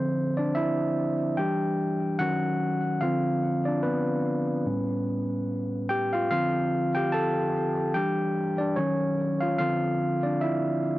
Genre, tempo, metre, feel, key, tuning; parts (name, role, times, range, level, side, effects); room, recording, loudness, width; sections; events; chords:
R&B; 73 BPM; 4/4; swing 57% on 16ths; D dorian; A4 = 438 Hz
overdriven tine electric piano; solo; 0.0-11.0 s; A2 to A5; -24 LUFS; equal
light reverb; dry, close 1970s-style studio recording; -24 LUFS; side -17 dB against mid
0.0-11.0 A section
tine electric piano solo 0.0-11.0
0.0 Dm9; 1.4 Em7; 2.2 Ebm7; 3.0 Dm7; 4.7 A9; 6.3 Dm7; 7.9 Em7; 8.8 Ebm9; 9.6 Dm9